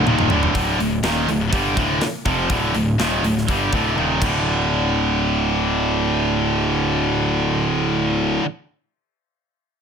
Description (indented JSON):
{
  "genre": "heavy metal",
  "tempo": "122 BPM",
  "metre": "4/4",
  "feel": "straight",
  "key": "D minor",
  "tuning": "A4 = 437 Hz",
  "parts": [
    { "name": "crunchy overdriven guitar", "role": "riff", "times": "0.0-0.6 s", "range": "D2 to Eb3", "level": "-23 LUFS", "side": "equal", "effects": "none" },
    { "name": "heavy high-gain guitar", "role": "riff", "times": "0.0-8.4 s", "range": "D2 to G3", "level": "-22 LUFS", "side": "left 11 dB", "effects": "distortion" },
    { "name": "heavy high-gain guitar", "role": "riff", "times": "0.0-8.5 s", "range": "D2 to G3", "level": "-22 LUFS", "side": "right 12 dB", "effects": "distortion" },
    { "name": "fuzz picked electric bass", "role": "bass", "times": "0.0-8.4 s", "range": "D1 to G1", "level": "-24 LUFS", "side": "equal", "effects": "overdrive" },
    { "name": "tight metal drum kit", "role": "drums", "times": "0.1-4.3 s", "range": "crash cymbal, hi-hat, kick drum, snare drum, toms", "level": "-25 LUFS", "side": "equal", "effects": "none" }
  ],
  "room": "light reverb",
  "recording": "none",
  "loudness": "-17 LUFS",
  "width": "side -7 dB against mid",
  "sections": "0.5-4.5 A section; 4.5-8.4 B section",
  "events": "drum fill 0.0-0.5, 4.0-4.5",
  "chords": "0.0 D5; 0.5 Dm; 4.2 D5",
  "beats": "0.06 | 0.55 1.04 1.53 2.02 | 2.51 3.00 3.49 3.98 | 4.47 4.96 5.46 5.95 | 6.44 6.93 7.42 7.91"
}